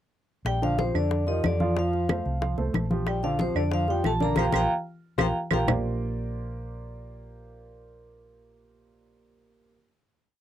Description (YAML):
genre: Afro-Cuban jazz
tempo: 184 BPM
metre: 4/4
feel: straight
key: Bb major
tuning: A4 = 439 Hz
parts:
  - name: hollow-body short-scale fingered electric bass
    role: bass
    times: 0.4-9.8 s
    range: Bb1 to F2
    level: -29 LUFS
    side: equal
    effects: none
  - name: vibraphone with medium hard mallets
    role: melody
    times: 0.5-5.6 s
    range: C5 to Bb5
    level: -29 LUFS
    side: equal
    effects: none
  - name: breathy tenor saxophone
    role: second line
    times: 0.5-5.6 s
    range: C3 to Bb3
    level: -32 LUFS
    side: left 12 dB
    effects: none
  - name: bongos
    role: percussion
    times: 0.5-5.8 s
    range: none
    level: -32 LUFS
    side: left 8 dB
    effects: none
  - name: claves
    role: percussion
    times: 0.5-5.8 s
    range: none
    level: -32 LUFS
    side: right 26 dB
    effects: none
  - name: congas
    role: percussion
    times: 0.5-5.8 s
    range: none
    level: -30 LUFS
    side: left 2 dB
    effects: none
  - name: dark upright piano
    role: accompaniment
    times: 0.6-9.8 s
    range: D3 to F5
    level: -31 LUFS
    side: right 3 dB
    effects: none
room: light reverb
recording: dry, close 1970s-style studio recording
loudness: -24 LUFS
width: side -11 dB against mid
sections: 0.5-5.7 A section; 5.7-8.3 final chord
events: band accent 4.4-5.7; drum fill 4.7-5.7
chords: 0.5 Bb6; 1.8 F; 3.1 Bb6; 5.7 Bb69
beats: | 0.46 0.79 1.11 1.44 | 1.76 2.09 2.41 2.74 | 3.06 3.39 3.72 4.04 | 4.37 4.70 5.03 5.35 | 5.68 6.01 6.33 6.66 | 6.99 7.32 7.64 7.97